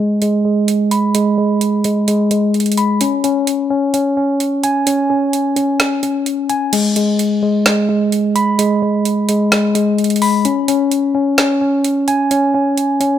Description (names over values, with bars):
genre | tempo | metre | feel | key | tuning
hip hop, trap | 129 BPM | 4/4 | half-time | G# minor | A4 = 441 Hz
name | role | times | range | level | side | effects
mellow tine electric piano | arpeggios | 0.0-13.2 s | G#3 to B5 | -13 LUFS | moving between left 6 dB and right 4 dB | auto-pan, low-pass filter, ping-pong delay
trap drum kit | drums | 0.2-13.1 s | crash cymbal, hi-hat, snare drum | -19 LUFS | right 2 dB | none
room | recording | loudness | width
light reverb, digital ambience | none | -13 LUFS | side -10 dB against mid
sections
0.0-6.7 A section; 6.7-13.2 B section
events
filter sweep on tine electric piano 0.0-6.7; kick muted 6.7-13.2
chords
0.0 G#m; 3.0 C#5; 6.7 G#m; 10.4 C#5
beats
0.22 0.68 | 1.15 1.61 2.08 2.54 | 3.01 3.47 3.94 4.40 | 4.87 5.33 5.80 6.26 | 6.73 7.19 7.66 8.12 | 8.59 9.05 9.52 9.98 | 10.45 10.91 11.38 11.84 | 12.31 12.78